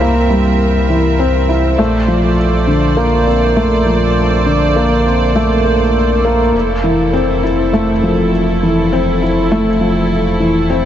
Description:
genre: electronica.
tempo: 101 BPM.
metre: 4/4.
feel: straight.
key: F major.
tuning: A4 = 440 Hz.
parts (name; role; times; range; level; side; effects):
clear studio string section; sustained chords; 0.0-10.9 s; C4 to E5; -20 LUFS; right 2 dB; none.
felt-muted upright piano; riff; 0.0-10.9 s; D3 to E4; -13 LUFS; left 1 dB; tape echo.
dark detuned saw bass; bass; 0.0-10.9 s; F1 to C2; -18 LUFS; right 1 dB; tube saturation.
room: moderate huge ambient reverb, RT60 9.5 s.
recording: dreamy mix soaked in reverb, nothing above 7.8 kHz.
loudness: -11 LUFS.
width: side -10 dB against mid.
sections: 0.0-10.9 A section.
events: none.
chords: 0.0 C7; 1.8 Bbmaj9; 6.5 Fmaj7.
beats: 0.01 0.60 1.20 | 1.79 2.38 2.98 3.57 | 4.17 4.76 5.35 5.95 | 6.54 7.14 7.73 8.32 | 8.92 9.51 10.11 10.70.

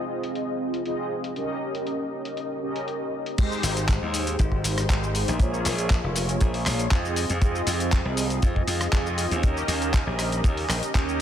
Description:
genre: nu-disco, nu disco.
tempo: 119 BPM.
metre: 4/4.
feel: straight.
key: Ab major.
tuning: A4 = 439 Hz.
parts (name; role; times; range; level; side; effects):
mellow synth brass; accompaniment; 0.0-11.2 s; Ab3 to Eb5; -28 LUFS; equal; chorus, ping-pong delay.
dusty soul sampler-style drum kit; drums; 0.2-11.2 s; crash cymbal, handclaps, hi-hat, rim click, shaker; -30 LUFS; left 1 dB; low-pass filter on hats, low-pass filter on cymbals, low-pass filter on perc, low-pass filter on snare.
kick drum; drums; 3.4-11.1 s; none; -22 LUFS; equal; none.
glassy slap bass; bass; 3.6-11.2 s; F1 to F2; -27 LUFS; equal; none.
room: small room ambience.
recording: none.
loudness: -23 LUFS.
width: side -10 dB against mid.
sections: 0.0-3.4 A section; 3.4-11.2 B section.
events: drop 3.4-11.2.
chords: 0.0 Fm7; 1.4 Eb7; 3.4 Abmaj7; 5.4 Bbm7; 7.2 Fm7; 9.4 Eb7.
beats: 0.36 0.86 | 1.37 1.87 2.37 2.88 | 3.38 3.89 4.39 4.89 | 5.40 5.90 6.41 6.91 | 7.42 7.92 8.42 8.93 | 9.43 9.94 10.44 10.95.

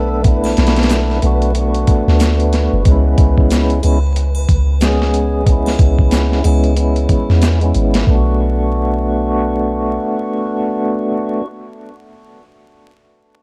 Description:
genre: trip hop.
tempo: 92 BPM.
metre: 4/4.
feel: swing 60% on 16ths.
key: B dorian.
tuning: A4 = 440 Hz.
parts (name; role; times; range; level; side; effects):
tonewheel organ; accompaniment; 0.0-11.5 s; G#3 to A4; -20 LUFS; equal; slow rotary speaker, tremolo, vintage 12-bit sampler grit, low-pass filter, tape echo.
soft 808-style bass; bass; 0.0-10.0 s; F#1 to E2; -17 LUFS; equal; none.
flickering grainy texture; texture; 0.0-8.1 s; B4; -34 LUFS; equal; none.
dusty soul sampler-style drum kit; drums; 0.2-8.2 s; hi-hat, kick drum, snare drum; -17 LUFS; equal; overdrive, studio reverb.
triangle and egg shaker; percussion; 0.4-7.6 s; none; -38 LUFS; equal; none.
room: little or no reverb.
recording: dark, warm production, vinyl crackle.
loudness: -14 LUFS.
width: mono.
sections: 0.0-8.1 A section; 8.1-10.7 B section.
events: filter sweep on tonewheel organ 0.0-8.1.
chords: 0.0 Bm7; 2.9 C#m7; 8.1 Bm7.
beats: | 0.24 0.90 1.55 2.20 | 2.85 3.50 4.16 4.81 | 5.46 6.11 6.76 7.42 | 8.07 8.72 9.37 10.03.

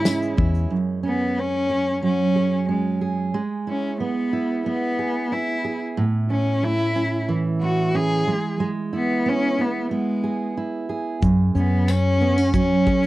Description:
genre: acoustic pop.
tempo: 91 BPM.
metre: 4/4.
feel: straight.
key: unclear.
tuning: A4 = 440 Hz.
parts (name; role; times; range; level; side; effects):
warm cello; melody; 0.0-13.1 s; G#3 to G#4; -24 LUFS; left 2 dB; none.
felt-muted upright piano; accompaniment; 0.0-0.7 s; E3 to C#5; -43 LUFS; left 6 dB; none.
fingerpicked steel-string acoustic guitar; accompaniment; 0.0-13.1 s; F#2 to G#4; -23 LUFS; right 3 dB; none.
warm studio string section; sustained chords; 0.0-0.7 s; C#3 to G#4; -40 LUFS; left 2 dB; none.
vintage muted fingered electric bass; bass; 0.0-0.7, 11.2-13.1 s; E2 to G#2; -21 LUFS; left 1 dB; none.
modern studio drum kit; drums; 0.1-0.7, 11.2-13.1 s; finger snaps, kick drum, shaker, snare drum; -22 LUFS; left 1 dB; none.
tambourine; percussion; 0.1-0.2, 11.9-12.0 s; none; -35 LUFS; left 8 dB; none.
room: little or no reverb.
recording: dry, close 1970s-style studio recording.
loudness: -20 LUFS.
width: side -17 dB against mid.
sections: 0.7-13.1 A section.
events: none.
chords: 0.0 C#m; 0.7 F#sus2; 3.3 E/G#; 6.0 A; 8.3 E/G#; 11.2 F#sus2.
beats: 0.06 | 0.71 1.37 2.03 2.68 | 3.34 4.00 4.66 5.31 | 5.97 6.63 7.29 7.94 | 8.60 9.26 9.91 10.57 | 11.23 11.88 12.54.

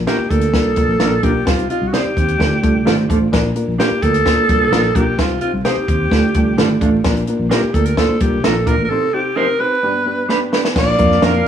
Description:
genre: uptempo 1960s-style soul.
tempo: 129 BPM.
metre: 4/4.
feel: straight.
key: unclear.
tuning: A4 = 440 Hz.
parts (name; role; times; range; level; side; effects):
reed electric piano; accompaniment; 0.0-11.5 s; G2 to Eb5; -19 LUFS; left 1 dB; fast tremolo.
vintage muted fingered electric bass; bass; 0.0-11.5 s; Ab1 to F2; -20 LUFS; equal; none.
breathy alto saxophone; melody; 0.1-11.5 s; F4 to D5; -18 LUFS; right 1 dB; tape echo.
mellow electric guitar; stabs; 0.1-11.3 s; D4 to C5; -22 LUFS; right 6 dB; wide subtle chorus.
compact cocktail drum kit; drums; 0.1-11.3 s; crash cymbal, hi-hat, kick drum, snare drum; -19 LUFS; equal; none.
warm horn section; second line; 10.8-11.5 s; Bb3 to F5; -22 LUFS; right 6 dB; none.
room: light reverb, small room ambience.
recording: vinyl crackle.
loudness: -13 LUFS.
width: side -9 dB against mid.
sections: 0.0-10.8 A section.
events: drum fill 10.3-10.8.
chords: 0.0 Bb; 1.5 Cm; 2.4 Dm; 3.3 Bb; 5.2 Cm; 6.1 Dm; 7.0 Bb; 8.9 Cm; 9.8 G; 10.8 Bb.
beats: 0.07 0.54 1.00 | 1.47 1.93 2.40 2.86 | 3.33 3.79 4.26 4.72 | 5.19 5.65 6.12 6.58 | 7.05 7.51 7.97 8.44 | 8.90 9.37 9.83 10.30 | 10.76 11.23.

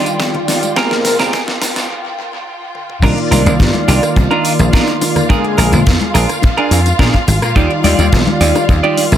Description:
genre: nu-disco, nu disco.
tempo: 106 BPM.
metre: 4/4.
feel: straight.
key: C minor.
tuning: A4 = 440 Hz.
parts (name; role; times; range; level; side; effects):
mellow synth brass; accompaniment; 0.0-9.2 s; C3 to D5; -17 LUFS; equal; chorus, vintage 12-bit sampler grit, sidechain pumping, dub echo.
warm studio string section; sustained chords; 0.0-9.2 s; F4 to G5; -22 LUFS; equal; sidechain pumping.
clean electric guitar; riff; 0.0-9.0 s; C4 to D5; -18 LUFS; right 4 dB; lush chorus, dub echo.
pop drum kit; drums; 0.1-9.2 s; crash cymbal, hi-hat, rim click, snare drum, tambourine, toms; -19 LUFS; equal; overdrive, dub echo.
tube shaker, congas and bongos; percussion; 0.1-9.2 s; none; -23 LUFS; left 4 dB; dub echo.
kick drum; drums; 0.2-8.8 s; none; -12 LUFS; equal; high-pass filter on kick, high-pass filter on snare, high-pass filter on room.
dry thumbed slap bass; bass; 3.0-9.2 s; Ab1 to Bb2; -13 LUFS; equal; none.
room: moderate spring reverb, RT60 1.4 s, studio ambience.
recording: echo-heavy mix, high-pass filter.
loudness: -10 LUFS.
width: side -10 dB against mid.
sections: 0.0-3.0 A section; 3.0-9.2 B section.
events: build-up 0.0-3.0; drum fill 0.0-1.9, 2.7; filter sweep 0.0-3.0; break 1.9-3.0; drop 3.0-9.2.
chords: 0.0 Ebmaj9; 0.8 Abmaj9; 3.0 Cm11; 5.3 Bb7; 7.6 Ebmaj9.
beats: 0.20 | 0.77 1.33 1.90 2.47 | 3.03 3.60 4.16 4.73 | 5.30 5.86 6.43 6.99 | 7.56 8.13 8.69.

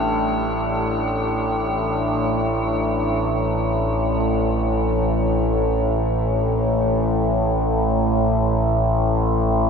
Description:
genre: ambient.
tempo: free time.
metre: none.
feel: none.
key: unclear.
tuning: A4 = 444 Hz.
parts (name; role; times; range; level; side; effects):
deep dark ambient pad; sustained chords; 0.0-4.3 s; A3 to G4; -39 LUFS; right 2 dB; none.
dark detuned synth bell; arpeggios; 0.0-9.7 s; none; barely audible; none; none.
overtone-sweeping drone; drone; 0.0-9.7 s; A1 to A2; -18 LUFS; equal; chorus, built-in reverb.
metallic inharmonic drone; texture; 0.0-4.2 s; D4; -30 LUFS; equal; chorus, built-in reverb.
room: wet huge ambient reverb, RT60 8.9 s.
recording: in a vast, echoing space.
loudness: -18 LUFS.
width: side -6 dB against mid.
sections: 0.0-4.2 A section; 4.2-9.7 B section.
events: none.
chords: 0.0 A5.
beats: free time.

